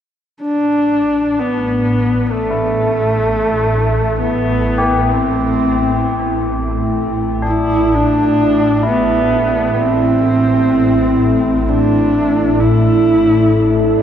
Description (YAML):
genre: dark ambient drone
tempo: free time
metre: none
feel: none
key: A minor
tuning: A4 = 440 Hz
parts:
  - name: dark horsehead fiddle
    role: melody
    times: 0.4-14.0 s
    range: A3 to E4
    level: -15 LUFS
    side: equal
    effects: diffuse ambient delay
  - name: deep dark ambient pad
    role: sustained chords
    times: 2.3-14.0 s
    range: E4 to E5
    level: -20 LUFS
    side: right 1 dB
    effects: chorus, built-in reverb
  - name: swarming drone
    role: drone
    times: 0.9-14.0 s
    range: A1 to A2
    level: -19 LUFS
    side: equal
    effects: built-in reverb
  - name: tubular bells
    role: arpeggios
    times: 2.5-14.0 s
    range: D4 to G4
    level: -21 LUFS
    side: right 1 dB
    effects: diffuse ambient delay
room: wet cathedral reverb, RT60 6.8 s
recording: worn, warbling old tape, cassette tape, warbly pitch drift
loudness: -12 LUFS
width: side -9 dB against mid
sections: 0.4-14.0 A section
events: none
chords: 0.4 A5